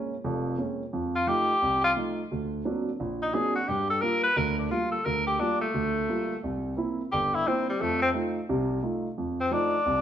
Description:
jazz; 175 BPM; 4/4; swing 64% on 8ths; F mixolydian; A4 = 439 Hz
warm grand piano; accompaniment; 0.0-10.0 s; F1 to F4; -29 LUFS; right 2 dB
clear tenor saxophone; melody; 1.2-10.0 s; G3 to B4; -25 LUFS; left 1 dB
wet stone room reverb, RT60 1.2 s; band playing live in one room; -25 LUFS; side -10 dB against mid
0.0-9.2 A section
0.0 Bbm7; 0.9 F7; 2.3 Daug7; 3.7 Gm7; 6.4 C7; 7.8 F7

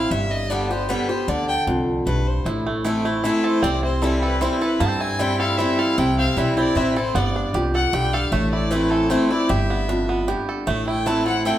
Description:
bluegrass; 153 BPM; 3/4; straight; A4 = 440 Hz
clear fiddle; melody; 0.0-11.6 s; A4 to A5; -26 LUFS; left 1 dB
picked swing-style acoustic guitar; accompaniment; 0.0-11.6 s; F2 to G4; -22 LUFS; equal
upright bass; bass; 0.0-11.5 s; G1 to G2; -25 LUFS; equal
bluegrass banjo; melody; 2.5-11.6 s; E3 to A4; -26 LUFS; right 3 dB
wet large studio reverb, RT60 1.4 s; band playing live in one room; -18 LUFS; side -12 dB against mid
0.0-11.6 A section
0.1 G; 2.5 Am; 3.6 C; 7.2 G; 8.3 Am; 9.5 G; 10.7 Am

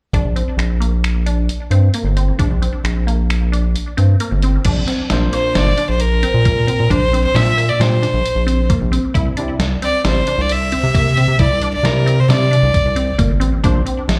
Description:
progressive instrumental, band music in an uneven meter; 133 BPM; 5/4; straight; A4 = 440 Hz
resonant blip pluck; arpeggios; 0.1-14.1 s; Bb3 to E4; -27 LUFS; equal; phaser, slapback echo, digital delay
round analog bass; bass; 0.1-14.2 s; G1 to C3; -18 LUFS; equal
lo-fi sampler-style drum kit; drums; 0.1-14.2 s; crash cymbal, finger snaps, hi-hat, kick drum, snare drum; -22 LUFS; equal
barky tine electric piano; accompaniment; 5.1-13.8 s; Bb2 to D5; -25 LUFS; equal; subtle chorus, slapback echo
clear violin; melody; 5.3-13.2 s; Bb4 to E5; -20 LUFS; equal; slapback echo
little or no reverb; live gig heard through the venue's PA, club reverb; -16 LUFS; mono
0.1-4.6 A section; 4.6-14.2 B section
0.1 Bbadd9; 9.1 Cadd9; 13.6 Bbadd9

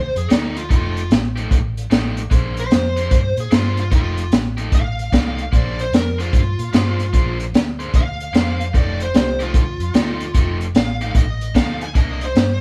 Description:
electric blues shuffle; 149 BPM; 4/4; swing 65% on 8ths; F mixolydian; A4 = 440 Hz
smooth overdriven lead guitar; melody; 0.0-12.6 s; Eb4 to Ab5; -28 LUFS; equal
vintage muted fingered electric bass; bass; 0.0-12.6 s; F1 to Bb2; -25 LUFS; equal
crunchy breakbeat drum kit; drums; 0.2-12.5 s; hi-hat, kick drum, snare drum; -19 LUFS; equal
biting overdriven guitar; riff; 0.3-12.3 s; C3 to C5; -30 LUFS; equal
dark upright piano; accompaniment; 9.1-9.4 s; Eb3 to F4; -32 LUFS; equal
light reverb; band playing live in one room; -18 LUFS; mono
0.0-12.6 A section
0.0 F9; 2.3 Bb9; 3.9 F9; 5.5 Bb9; 8.7 F9; 12.0 C9

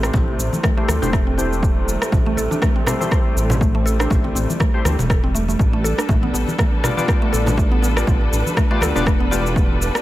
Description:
afro house; 121 BPM; 4/4; swing 56% on 16ths; A minor; A4 = 440 Hz
muted studio string section; sustained chords; 0.0-10.0 s; C3 to B4; -26 LUFS; right 1 dB; sidechain pumping
mallet-like synth pluck; arpeggios; 0.0-9.6 s; A3 to A4; -26 LUFS; equal; chorus, sidechain pumping, digital delay
warm analog keys; stabs; 0.0-10.0 s; A3 to D5; -26 LUFS; left 4 dB; chorus, sidechain pumping, low-pass filter, digital delay
dark detuned saw bass; bass; 0.0-9.9 s; E1 to D2; -22 LUFS; equal; tube saturation, sidechain pumping
electronic rim click and shaker; drums; 0.0-10.0 s; -26 LUFS; equal; overdrive, small room reverb
electronic kick drum; drums; 0.1-9.7 s; -19 LUFS; equal; overdrive, small room reverb
congas; percussion; 0.1-9.0 s; -26 LUFS; equal
little or no reverb; -16 LUFS; side -15 dB against mid
0.0-10.0 A section
filter sweep on synth keys 0.0-10.0
0.0 Am7; 5.6 G7

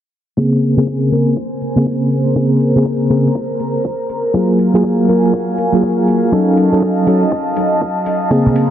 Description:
deep house; 121 BPM; 4/4; swing 61% on 16ths; Bb minor; A4 = 439 Hz
airy breathy pad; sustained chords; 0.4-8.7 s; Gb3 to Bb5; -20 LUFS; equal; chorus, sidechain pumping
mellow FM electric piano; stabs; 0.4-8.7 s; Db3 to Bb4; -13 LUFS; equal; chorus, tremolo, sidechain pumping, low-pass filter, tape echo
electronic kick drum; drums; 0.4-8.4 s; -24 LUFS; equal; high-pass filter on kick
electronic hi-hat; drums; 0.6-8.7 s; -47 LUFS; left 1 dB; low-pass filter on hats
tambourine and hi-hat; drums; 8.3-8.7 s; -48 LUFS; left 4 dB
congas; percussion; 8.5 s; -16 LUFS; equal
moderate lush hall reverb, RT60 2.2 s; heavily compressed radio sound, low-pass filter; -12 LUFS; side -10 dB against mid
0.4-8.7 A section
filter sweep on drum 0.4-8.7; filter sweep on FM electric piano 0.4-8.7; filter sweep 0.4-8.7
0.4 Bbm9; 4.3 Gbmaj9; 6.3 F7b9b13

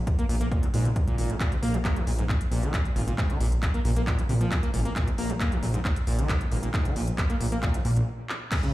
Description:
driving peak-time techno; 135 BPM; 4/4; straight; Bb minor; A4 = 440 Hz
electronic kick drum; drums; 0.1-8.6 s; -27 LUFS; equal; studio reverb
techno drum kit; drums; 0.1-8.7 s; crash cymbal, handclaps, hi-hat, ride cymbal; -34 LUFS; equal; studio reverb
overdriven acid bass; riff; 0.2-8.7 s; Bb1 to Bb3; -30 LUFS; equal; lush chorus, sidechain pumping, tape echo
detuned saw bass; bass; 0.3-8.0 s; Ab1 to Bb2; -26 LUFS; equal; sidechain pumping
swarming drone; drone; 8.6-8.7 s; Bb2; -38 LUFS; right 2 dB
light reverb; played on a big sound system in a bare room, large studio reverb; -24 LUFS; side -16 dB against mid
0.0-8.5 A section
stop 8.1-8.5; drum fill 8.3

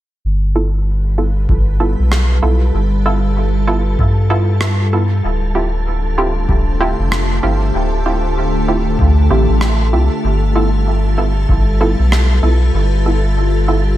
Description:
ambient dub; 96 BPM; 4/4; swing 60% on 16ths; A4 = 440 Hz
soft additive organ-like pad; sustained chords; 0.8-14.0 s; D3 to E5; -21 LUFS; left 1 dB; ensemble chorus, built-in reverb
soft dub sub bass; bass; 0.2-14.0 s; D1 to G2; -14 LUFS; equal
wind-like tuned noise texture; texture; 1.1-14.0 s; A4; -28 LUFS; right 1 dB; built-in reverb
filtered dub chord stab; stabs; 0.6-13.8 s; B3 to A4; -20 LUFS; right 2 dB; wide subtle chorus, dub echo
electronic kick drum; drums; 1.5-11.6 s; -17 LUFS; equal
rim click; drums; 2.1-12.3 s; -21 LUFS; right 1 dB
digital ambience; -12 LUFS; side -14 dB against mid
0.2-14.0 A section
0.2 G13; 5.2 Dm11; 10.2 G13

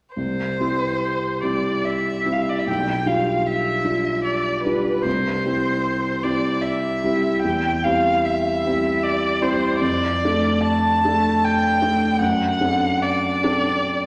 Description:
classical, slow romantic movement for piano trio; 67-79 BPM; 3/4; rubato; C major; A4 = 440 Hz
rich violin; melody; 0.2-14.1 s; B4 to A5; -24 LUFS; equal
dark baby grand piano; accompaniment; 0.2-14.1 s; B1 to A4; -24 LUFS; equal
wet concert hall reverb, RT60 1.9 s; -21 LUFS; mono
0.2-14.1 A section
0.2 C; 2.7 G7/B; 5.1 C; 7.4 C/E; 9.8 Dm/F; 12.2 D7/F#

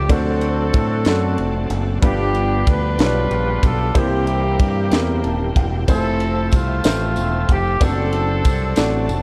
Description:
slow gospel; 62 BPM (dotted quarters); 6/8; straight; A4 = 440 Hz
clear horn section; melody; 0.0-9.2 s; A3 to B4; -26 LUFS; equal
warm concert grand piano; accompaniment; 0.0-9.2 s; G2 to A5; -26 LUFS; equal
bright tonewheel organ; sustained chords; 0.0-9.2 s; E3 to A5; -32 LUFS; equal; slow rotary speaker, overdrive, chorus vibrato
fingered electric bass; bass; 0.0-9.2 s; Eb1 to A2; -23 LUFS; equal
crisp fusion drum kit; drums; 0.1-9.2 s; kick drum, ride cymbal, snare drum; -22 LUFS; equal
tambourine; percussion; 5.9-9.2 s; -40 LUFS; equal
light reverb; dark, warm production; -18 LUFS; mono
0.0-9.2 A section
grand piano fill 4.9-5.9, 8.8-9.2; tonewheel organ fill 8.8-9.2
0.1 D7; 2.0 G7; 4.0 C7; 5.9 Fmaj7; 7.8 D7/F#

